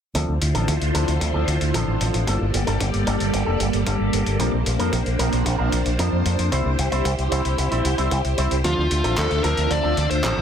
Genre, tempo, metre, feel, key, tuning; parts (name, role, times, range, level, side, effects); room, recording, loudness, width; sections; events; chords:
italo disco; 113 BPM; 4/4; straight; D minor; A4 = 444 Hz
phased string machine; sustained chords; 0.1-10.4 s; D3 to E5; -25 LUFS; equal; ensemble chorus, phaser
electric guitar with an envelope filter; stabs; 0.1-10.4 s; F3 to C5; -27 LUFS; right 1 dB; low-pass filter, ping-pong delay
fingered electric bass with an envelope filter; bass; 0.1-10.4 s; F1 to F2; -22 LUFS; equal
dusty soul sampler-style drum kit; drums; 0.1-10.3 s; handclaps, hi-hat; -29 LUFS; left 1 dB; overdrive
electronic kick drum; drums; 0.1-10.3 s; -34 LUFS; equal
smooth overdriven lead guitar; melody; 8.6-10.4 s; F4 to D5; -23 LUFS; left 1 dB
light reverb; -19 LUFS; side -8 dB against mid
0.1-10.4 A section
filter sweep on clean electric guitar 0.1-10.4
0.1 Dm7; 2.3 Gmadd9; 4.4 Bbadd9; 6.5 C; 8.6 Dm7